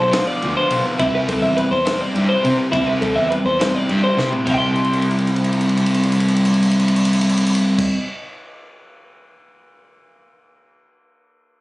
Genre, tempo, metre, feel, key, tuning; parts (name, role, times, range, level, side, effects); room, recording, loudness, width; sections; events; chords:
math rock and midwest emo; 69 BPM (dotted quarters); 6/8; straight; C major; A4 = 440 Hz
twelve-string electric guitar; arpeggios; 0.0-7.9 s; E4 to C6; -20 LUFS; left 1 dB
fuzz fingered electric bass; bass; 0.0-7.9 s; B1 to C3; -21 LUFS; equal; overdrive
crunchy overdriven guitar; riff; 0.1-8.0 s; C3 to F4; -19 LUFS; equal
compact cocktail drum kit; drums; 0.1-9.4 s; crash cymbal, kick drum, ride cymbal, snare drum, toms; -25 LUFS; equal
little or no reverb; recorded on a phone in the room, club reverb, nothing above 10.9 kHz; -15 LUFS; side -19 dB against mid
0.0-4.5 A section; 4.5-7.9 B section
drum fill 4.2, 4.8-7.8
0.0 G7 (rootless); 1.0 Cmaj9; 4.5 C